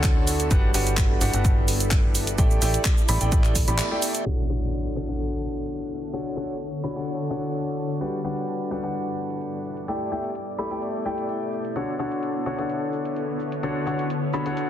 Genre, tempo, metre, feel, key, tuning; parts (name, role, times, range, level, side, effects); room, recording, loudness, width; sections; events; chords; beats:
piano house; 128 BPM; 4/4; straight; D major; A4 = 440 Hz
clear grand piano; riff; 0.0-14.7 s; D3 to B5; -27 LUFS; left 1 dB; sidechain pumping, ping-pong delay
fingered electric bass; bass; 0.0-3.8 s; G1 to D2; -25 LUFS; equal; tube saturation, sidechain pumping
electronic kick drum; drums; 0.0-3.7 s; -21 LUFS; equal
house drum kit; drums; 0.0-14.7 s; handclaps, hi-hat, shaker; -27 LUFS; right 1 dB; soft clipping on snare
granular cloud pad; texture; 0.0-14.7 s; G2 to D5; -31 LUFS; equal; built-in reverb, sidechain pumping
impact; sound effects; 4.3-6.1 s; -29 LUFS; equal
light reverb, digital ambience; dense, heavily limited modern master, low-pass filter; -22 LUFS; side -11 dB against mid
0.0-4.3 A section; 4.3-14.7 B section
break 3.8-4.3; band accent 3.8; impact 4.3-6.1; filter sweep 4.3-14.7
0.0 Dmaj7; 0.5 Gmaj7; 2.4 A7sus4; 4.3 Dmaj7; 8.0 Gmaj7; 9.9 A7sus4; 11.8 Dmaj7
0.04 | 0.51 0.98 1.45 1.92 | 2.38 2.85 3.32 3.79 | 4.26 4.73 5.20 5.67 | 6.13 6.60 7.07 7.54 | 8.01 8.48 8.95 9.41 | 9.88 10.35 10.82 11.29 | 11.76 12.23 12.70 13.16 | 13.63 14.10 14.57